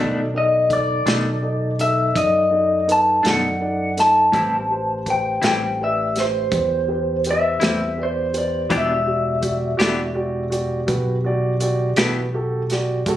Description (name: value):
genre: slow blues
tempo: 55 BPM (dotted quarters)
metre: 12/8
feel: straight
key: E minor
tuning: A4 = 440 Hz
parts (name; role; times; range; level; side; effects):
- dark baby grand piano; accompaniment; 0.0-13.2 s; D#4 to D#5; -25 LUFS; right 1 dB; none
- semi-hollow electric guitar; accompaniment; 0.0-12.2 s; A2 to G4; -22 LUFS; left 3 dB; tremolo
- fingered electric bass; bass; 0.0-13.2 s; E1 to F#2; -26 LUFS; equal; none
- electric guitar through a small old amp; melody; 0.4-13.2 s; C5 to A5; -19 LUFS; left 1 dB; none
- warm soul drum kit; drums; 0.7-13.2 s; hi-hat, kick drum, snare drum; -23 LUFS; right 1 dB; none
room: light reverb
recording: recorded on a phone in the room, studio reverb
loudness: -17 LUFS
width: side -12 dB against mid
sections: 0.0-13.2 A section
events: none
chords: 0.0 B7#9; 4.3 Am7; 8.7 Em7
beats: 1.06 2.15 3.25 | 4.34 5.43 6.52 7.61 | 8.70 9.79 10.88 11.97 | 13.07